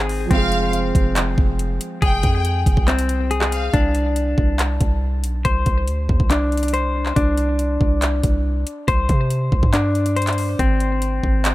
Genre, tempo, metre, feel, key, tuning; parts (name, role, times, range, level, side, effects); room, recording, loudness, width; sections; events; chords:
hip hop, trap; 140 BPM; 4/4; half-time; A4 = 439 Hz
dark grand piano; accompaniment; 0.0-3.8 s; Eb3 to Ab4; -27 LUFS; right 4 dB; low-pass filter
semi-hollow electric guitar; arpeggios; 0.0-11.5 s; C4 to C5; -23 LUFS; left 2 dB; low-pass filter, ping-pong delay
hard-hitting 808-style bass; bass; 0.0-11.5 s; F1 to C3; -21 LUFS; equal
trap drum kit; drums; 0.1-11.5 s; handclaps, hi-hat, kick drum, rim click; -20 LUFS; equal
rich studio violin section; second line; 0.3-3.7 s; F5 to G5; -27 LUFS; left 1 dB; ping-pong delay
little or no reverb; -17 LUFS; side -17 dB against mid
0.0-3.7 A section; 3.7-11.5 B section
0.3 Fm; 3.7 Csus2; 10.6 Ab